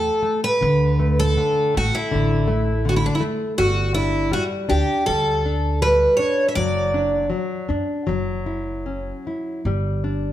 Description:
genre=fado-style ballad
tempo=80 BPM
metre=4/4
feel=uneven beats, rubato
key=unclear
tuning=A4 = 437 Hz
part: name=picked twelve-string acoustic guitar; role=melody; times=0.0-7.3 s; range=D4 to E5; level=-20 LUFS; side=right 1 dB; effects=none
part: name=nylon-string guitar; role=accompaniment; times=0.0-10.3 s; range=D3 to E4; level=-25 LUFS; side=left 2 dB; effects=none
part: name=upright bass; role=bass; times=0.0-10.3 s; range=F#1 to F#2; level=-23 LUFS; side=right 1 dB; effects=none
room=moderate recital hall reverb, RT60 1.3 s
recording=dark, warm production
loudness=-18 LUFS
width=side -12 dB against mid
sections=0.0-10.3 A section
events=none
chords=0.0 A5; 0.6 Dsus2; 3.6 G5; 6.6 D/F#; 8.1 F#5; 9.6 G5

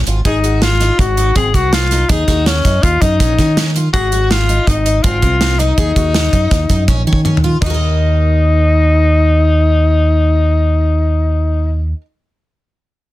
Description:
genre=progressive instrumental, band music in an uneven meter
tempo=163 BPM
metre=5/4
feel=straight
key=Eb dorian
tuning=A4 = 441 Hz
part: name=fingered electric bass with an envelope filter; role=bass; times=0.0-11.9 s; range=Ab1 to Eb3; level=-14 LUFS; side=right 1 dB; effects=none
part: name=picked twelve-string acoustic guitar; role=arpeggios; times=0.1-12.0 s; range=C4 to Eb5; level=-24 LUFS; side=right 1 dB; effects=lush chorus
part: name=modern studio drum kit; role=drums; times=0.1-7.7 s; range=hi-hat, kick drum, snare drum, splash cymbal, toms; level=-16 LUFS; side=equal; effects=none
part: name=mellow tenor saxophone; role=melody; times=0.3-11.9 s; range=Db4 to Ab4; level=-16 LUFS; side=left 4 dB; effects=none
room=light reverb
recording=dense, heavily limited modern master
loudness=-11 LUFS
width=side -16 dB against mid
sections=0.0-7.6 A section; 7.6-11.3 B section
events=drum fill 6.9-7.6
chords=0.3 Ab7; 2.1 Ebm7; 3.9 Ab7; 5.8 Ebm7; 7.6 Eb5

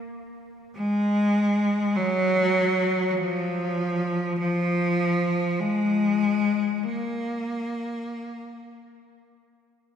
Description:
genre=ambient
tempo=free time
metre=none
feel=none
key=unclear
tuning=A4 = 440 Hz
part: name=bright cello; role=melody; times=0.8-9.3 s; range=F3 to Bb3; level=-23 LUFS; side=equal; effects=analog delay
room=wet lush hall reverb, RT60 3.2 s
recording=dreamy mix soaked in reverb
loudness=-22 LUFS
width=side -8 dB against mid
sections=0.0-10.0 A section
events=fade-out 0.0-10.0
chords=none

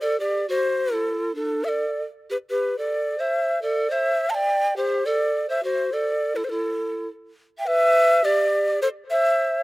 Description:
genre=andean folk, Andean ensemble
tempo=104 BPM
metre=2/4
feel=straight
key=A minor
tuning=A4 = 445 Hz
part: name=breathy mellow quena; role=melody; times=0.0-9.6 s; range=A4 to A5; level=-22 LUFS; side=equal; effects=slapback echo
part: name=bright polished pan flute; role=second line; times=0.0-9.6 s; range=D4 to F5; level=-26 LUFS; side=right 1 dB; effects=none
room=little or no reverb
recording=recorded outdoors, with no room sound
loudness=-20 LUFS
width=side -19 dB against mid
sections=0.0-7.7 A section; 7.7-9.6 B section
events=none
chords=none

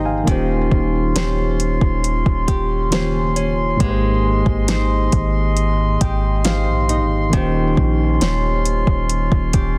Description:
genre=contemporary R&B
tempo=68 BPM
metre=4/4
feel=straight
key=unclear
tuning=A4 = 439 Hz
part: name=tine electric piano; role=accompaniment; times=0.0-9.8 s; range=Ab2 to Bb5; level=-24 LUFS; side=equal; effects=none
part: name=clear woodwind section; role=sustained chords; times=0.0-9.8 s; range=Ab3 to C6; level=-27 LUFS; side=equal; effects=none
part: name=nylon-string guitar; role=arpeggios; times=0.0-9.8 s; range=Eb3 to C5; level=-27 LUFS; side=equal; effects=digital delay
part: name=soft 808-style bass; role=bass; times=0.0-9.8 s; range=Eb1 to Bb1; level=-23 LUFS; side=equal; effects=none
part: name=smooth R&B drum kit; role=drums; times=0.3-9.7 s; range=hi-hat, kick drum, snare drum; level=-21 LUFS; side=equal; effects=overdrive
room=digital ambience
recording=dense, heavily limited modern master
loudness=-18 LUFS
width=mono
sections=0.0-9.8 A section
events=tine electric piano fill 5.6-7.3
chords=0.3 Eb13; 3.8 Abmaj7; 7.3 Eb13

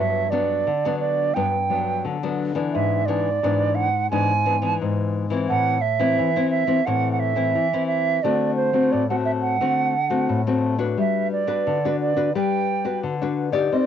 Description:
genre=samba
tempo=87 BPM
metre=4/4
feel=straight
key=G major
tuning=A4 = 440 Hz
part: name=hollow concert flute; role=melody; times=0.0-13.9 s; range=C5 to G#5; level=-22 LUFS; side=right 7 dB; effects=cassette tape
part: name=nylon-string guitar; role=accompaniment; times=0.0-13.9 s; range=G2 to D5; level=-22 LUFS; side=left 4 dB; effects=cassette tape
room=wet booth ambience, RT60 0.2 s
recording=home recording on cassette, nothing above 8.0 kHz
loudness=-19 LUFS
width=side -9 dB against mid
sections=0.0-13.9 A section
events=none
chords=0.0 Gmaj7; 2.7 E7/G#; 5.5 Am; 8.2 D7; 11.0 Gmaj7

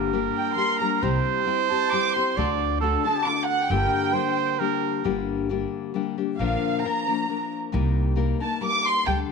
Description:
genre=mexican folk, mariachi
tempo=134 BPM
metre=3/4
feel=straight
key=G minor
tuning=A4 = 437 Hz
part: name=bright trumpet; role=second line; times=0.0-5.0 s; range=A4 to D5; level=-26 LUFS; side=right 13 dB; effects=none
part: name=nylon-string guitar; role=accompaniment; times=0.0-9.3 s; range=G2 to Bb4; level=-26 LUFS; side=left 11 dB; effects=none
part: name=upright bass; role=bass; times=0.0-9.2 s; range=G1 to D2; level=-26 LUFS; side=right 1 dB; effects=none
part: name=dark studio violin section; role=melody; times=0.4-9.2 s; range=F5 to D6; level=-26 LUFS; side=right 1 dB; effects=none
room=moderate plate reverb, RT60 2.8 s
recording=1960s-style stereo with parts hard left and right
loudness=-22 LUFS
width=side -4 dB against mid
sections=0.0-5.0 A section; 5.0-9.3 A section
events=none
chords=0.0 Gm; 1.0 C; 2.4 D; 3.7 Gm; 6.4 Bb; 7.7 Cm7

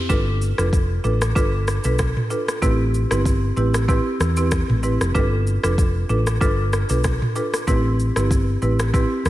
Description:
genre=afrobeats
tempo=95 BPM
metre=4/4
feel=swing 55% on 16ths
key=unclear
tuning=A4 = 440 Hz
part: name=marimba with medium mallets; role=accompaniment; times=0.0-9.2 s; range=C4 to B4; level=-23 LUFS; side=right 1 dB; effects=none
part: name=hollow-body short-scale fingered electric bass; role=bass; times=0.1-9.3 s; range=F1 to E2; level=-20 LUFS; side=equal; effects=none
part: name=afro-pop drum kit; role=drums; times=0.1-9.3 s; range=kick drum, rim click, shaker, toms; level=-22 LUFS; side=equal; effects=vintage 12-bit sampler grit
room=light reverb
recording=none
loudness=-18 LUFS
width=side -15 dB against mid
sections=0.1-9.3 A section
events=none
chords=0.1 G7; 2.6 Am7; 5.1 G7; 7.7 Am7

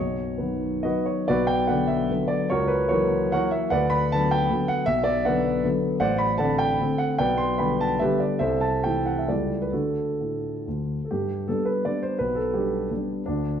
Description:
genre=classical, romantic triple-time dance for piano with dotted rhythms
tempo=125-183 BPM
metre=3/4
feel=rubato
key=B minor, G major from 6.0 s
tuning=A4 = 440 Hz
part: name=warm concert grand piano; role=solo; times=0.0-13.6 s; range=A1 to C6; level=-22 LUFS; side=equal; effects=none
room=wet recital hall reverb, RT60 1.4 s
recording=none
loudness=-22 LUFS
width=side -8 dB against mid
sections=0.0-1.3 A section; 1.3-11.1 B section; 11.1-13.6 C section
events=none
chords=0.0 B; 1.3 Bm; 2.5 F#7/C#; 3.7 Bm/D; 4.9 Bm; 6.0 D7/A; 7.2 G/B; 8.4 Am/C; 9.3 A7/C#; 9.7 D; 11.1 G; 12.2 G/B

